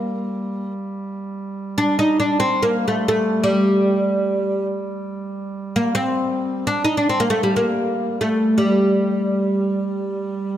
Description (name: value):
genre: Arabic maqam ensemble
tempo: free time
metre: none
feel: none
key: G minor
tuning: A4 = 440 Hz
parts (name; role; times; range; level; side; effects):
- oud; melody; 0.0-10.6 s; G3 to Eb4; -18 LUFS; equal; none
- mellow duduk; drone; 0.0-10.6 s; G3; -28 LUFS; right 2 dB; none
room: moderate concert hall reverb, RT60 2.6 s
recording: close, detailed microphones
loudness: -18 LUFS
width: side -11 dB against mid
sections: 0.0-10.6 A section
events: none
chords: none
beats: free time